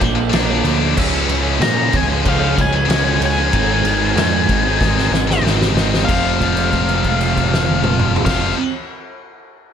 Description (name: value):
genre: quiet-loud alternative rock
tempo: 94 BPM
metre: 4/4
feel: straight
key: F minor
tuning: A4 = 440 Hz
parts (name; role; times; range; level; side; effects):
- heavy high-gain guitar; riff; 0.0-8.6 s; F2 to Eb4; -21 LUFS; left 11 dB; distortion
- thick fuzz guitar; riff; 0.0-8.6 s; F2 to F4; -21 LUFS; right 10 dB; distortion
- growling picked electric bass; bass; 0.0-8.5 s; F1 to Bb2; -20 LUFS; equal; overdrive
- loose indie drum kit; drums; 0.0-8.4 s; crash cymbal, kick drum, ride cymbal, snare drum, toms; -19 LUFS; equal; none
- octave-fuzz lead guitar; melody; 1.6-8.5 s; F5 to Bb5; -21 LUFS; left 4 dB; distortion, slapback echo
room: light reverb, studio reverb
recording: none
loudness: -14 LUFS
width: side -8 dB against mid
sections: 0.0-6.1 A section; 6.1-8.6 B section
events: drum fill 4.8-6.1; held note 6.1-8.3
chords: 0.0 Bb; 1.0 Db; 3.5 Ab; 6.1 Fm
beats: 0.33 | 0.97 1.61 2.25 2.89 | 3.53 4.17 4.80 5.44 | 6.08 6.72 7.36 8.00